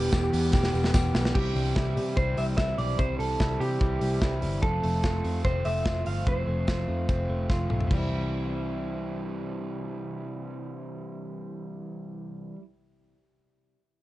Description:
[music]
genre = jangly indie pop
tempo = 146 BPM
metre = 4/4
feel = straight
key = C major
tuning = A4 = 437 Hz
[part]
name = electric guitar through a small old amp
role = melody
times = 0.0-7.5 s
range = G4 to F5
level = -31 LUFS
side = right 1 dB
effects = none
[part]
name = raw garage guitar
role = accompaniment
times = 0.0-12.6 s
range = E2 to G4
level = -36 LUFS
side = right 5 dB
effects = overdrive
[part]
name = direct-recorded clean electric guitar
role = arpeggios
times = 0.0-12.6 s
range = E2 to G4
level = -34 LUFS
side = left 3 dB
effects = analog delay
[part]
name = vintage muted picked electric bass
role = bass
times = 0.0-12.5 s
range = E1 to C3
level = -29 LUFS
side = equal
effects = none
[part]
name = modern studio drum kit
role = drums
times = 0.1-8.0 s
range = crash cymbal, hi-hat, kick drum, snare drum, toms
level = -28 LUFS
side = equal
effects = none
[part]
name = tambourine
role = percussion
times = 0.1-1.2 s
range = none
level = -45 LUFS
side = left 8 dB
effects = none
[sound]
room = light reverb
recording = dark, warm production, nothing above 10.3 kHz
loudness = -25 LUFS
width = side -16 dB against mid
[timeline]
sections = 0.0-1.4 A section; 1.4-7.9 B section; 7.9-11.2 C section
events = drum fill 0.5-1.4, 7.5-7.9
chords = 0.0 Em; 1.4 C; 4.6 F; 7.9 C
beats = 0.13 0.54 0.94 | 1.35 1.76 2.17 2.58 | 2.99 3.40 3.81 4.21 | 4.62 5.03 5.44 5.85 | 6.26 6.67 7.08 7.50 | 7.91 8.31 8.73 9.14 | 9.55 9.96 10.37 10.78

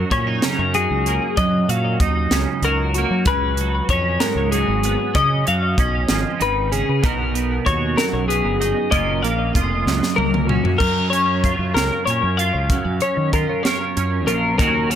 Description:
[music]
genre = math rock and midwest emo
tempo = 64 BPM (dotted quarters)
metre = 6/8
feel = straight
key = F# major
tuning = A4 = 437 Hz
[part]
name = twelve-string electric guitar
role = accompaniment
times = 0.0-15.0 s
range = F#2 to A#4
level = -23 LUFS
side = right 8 dB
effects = ensemble chorus
[part]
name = twelve-string electric guitar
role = arpeggios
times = 0.0-15.0 s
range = F#4 to E#5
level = -21 LUFS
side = left 5 dB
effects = wide subtle chorus, digital delay
[part]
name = fuzz fingered electric bass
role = bass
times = 0.0-15.0 s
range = E#1 to F#3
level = -22 LUFS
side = equal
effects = overdrive
[part]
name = crisp fusion drum kit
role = drums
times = 0.1-15.0 s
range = crash cymbal, hi-hat, kick drum, snare drum, toms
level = -22 LUFS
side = equal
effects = none
[sound]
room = light reverb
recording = none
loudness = -17 LUFS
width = side -9 dB against mid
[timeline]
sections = 0.0-10.8 A section; 10.8-15.0 B section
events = drum fill 9.9-10.8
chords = 0.0 F#69; 3.3 C#7sus4; 7.0 Bmaj9; 8.9 F#maj7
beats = 0.43 | 1.37 2.32 | 3.26 4.20 | 5.15 6.09 | 7.03 7.98 | 8.92 9.87 | 10.81 11.76 | 12.70 13.65 | 14.60

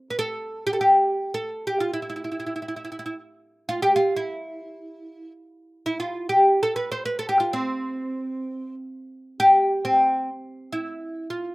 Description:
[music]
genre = Turkish makam ensemble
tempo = free time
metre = none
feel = none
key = C makam rast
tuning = A4 = 440 Hz
[part]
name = oud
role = solo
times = 0.1-11.5 s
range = C4 to C5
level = -21 LUFS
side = equal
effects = none
[sound]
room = little or no reverb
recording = recorded outdoors, with no room sound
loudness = -21 LUFS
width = side -21 dB against mid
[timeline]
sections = 0.0-10.4 A section; 10.4-11.5 A section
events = none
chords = none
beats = free time

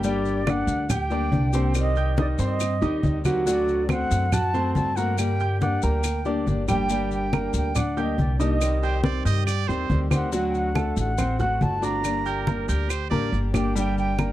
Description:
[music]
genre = latin, Cuban son and guajira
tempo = 140 BPM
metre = 4/4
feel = straight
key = G harmonic minor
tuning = A4 = 438 Hz
[part]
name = flamenco guitar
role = accompaniment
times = 0.0-14.3 s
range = C3 to G4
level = -30 LUFS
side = left 4 dB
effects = none
[part]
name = clear grand piano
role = arpeggios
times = 0.0-14.3 s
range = F#3 to G6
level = -28 LUFS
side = right 2 dB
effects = none
[part]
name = upright bass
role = bass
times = 0.0-14.3 s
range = G1 to G2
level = -26 LUFS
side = equal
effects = none
[part]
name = congas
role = percussion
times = 0.0-14.3 s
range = none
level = -27 LUFS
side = left 1 dB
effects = none
[part]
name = maracas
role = percussion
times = 0.0-14.3 s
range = none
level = -38 LUFS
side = left 14 dB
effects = none
[part]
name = concert flute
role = melody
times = 0.1-14.3 s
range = D5 to Bb5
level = -29 LUFS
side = right 1 dB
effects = none
[part]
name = claves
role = percussion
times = 0.5-14.3 s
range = none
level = -36 LUFS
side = right 14 dB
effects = none
[part]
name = brilliant trumpet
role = second line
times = 8.8-13.4 s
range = Bb4 to Eb5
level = -32 LUFS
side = right 10 dB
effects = none
[sound]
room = studio ambience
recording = dry, close 1970s-style studio recording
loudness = -21 LUFS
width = side -14 dB against mid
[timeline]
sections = 0.0-6.9 A section; 6.9-14.3 B section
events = drum fill 6.5-6.9, 13.1-13.8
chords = 0.0 Gm; 1.8 Cm; 3.5 D7; 5.2 Gm; 8.6 Cm; 10.3 D7; 12.0 Gm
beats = | 0.04 0.47 0.90 1.32 | 1.75 2.18 2.61 3.04 | 3.47 3.90 4.33 4.75 | 5.18 5.61 6.04 6.47 | 6.90 7.33 7.76 8.19 | 8.61 9.04 9.47 9.90 | 10.33 10.76 11.19 11.62 | 12.04 12.47 12.90 13.33 | 13.76 14.19

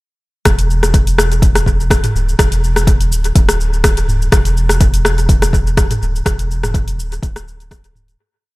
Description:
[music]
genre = afro house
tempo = 124 BPM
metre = 4/4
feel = swing 54% on 16ths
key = unclear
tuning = A4 = 440 Hz
[part]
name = warm sub bass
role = bass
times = 0.5-8.2 s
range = D1 to E1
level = -16 LUFS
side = equal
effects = sidechain pumping
[part]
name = afro-pop drum kit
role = drums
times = 0.5-8.2 s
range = hi-hat, rim click, shaker, toms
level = -17 LUFS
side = left 1 dB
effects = studio reverb, dub echo
[part]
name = electronic kick drum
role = drums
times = 0.5-7.8 s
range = none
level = -13 LUFS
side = equal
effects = studio reverb
[sound]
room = little or no reverb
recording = echo-heavy mix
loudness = -11 LUFS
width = side -21 dB against mid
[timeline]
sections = 0.5-8.2 drop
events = drop 0.5-8.2; fade-out 5.6-8.2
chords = none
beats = | 0.45 0.94 1.42 1.91 | 2.39 2.87 3.36 3.84 | 4.33 4.81 5.29 5.78 | 6.26 6.74 7.23 7.71

